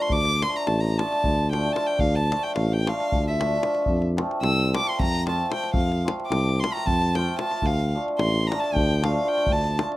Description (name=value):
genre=balkan folk, Balkan wedding band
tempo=224 BPM (eighths)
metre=7/8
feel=straight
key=D minor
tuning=A4 = 440 Hz
part: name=rich violin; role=melody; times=0.0-9.8 s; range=E5 to E6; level=-27 LUFS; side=equal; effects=none
part: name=hammered dulcimer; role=accompaniment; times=0.0-10.0 s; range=F3 to F4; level=-27 LUFS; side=equal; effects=none
part: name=dark tuba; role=bass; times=0.1-9.8 s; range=A1 to F2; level=-24 LUFS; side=equal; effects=none
part: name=davul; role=percussion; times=0.1-10.0 s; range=none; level=-29 LUFS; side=left 1 dB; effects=none
room=light reverb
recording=rough home demo mix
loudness=-21 LUFS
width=side -16 dB against mid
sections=0.0-10.0 A section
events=violin solo 0.0-10.0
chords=0.0 Dm; 3.9 F; 7.6 Dm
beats=| 0.10 0.37 0.64 0.91 1.18 1.45 1.72 | 1.99 2.26 2.53 2.80 3.06 3.33 3.60 | 3.87 4.14 4.41 4.67 4.94 5.21 5.48 | 5.75 6.01 6.28 6.55 6.82 7.08 7.35 | 7.62 7.88 8.15 8.41 8.68 8.94 9.21 | 9.47 9.74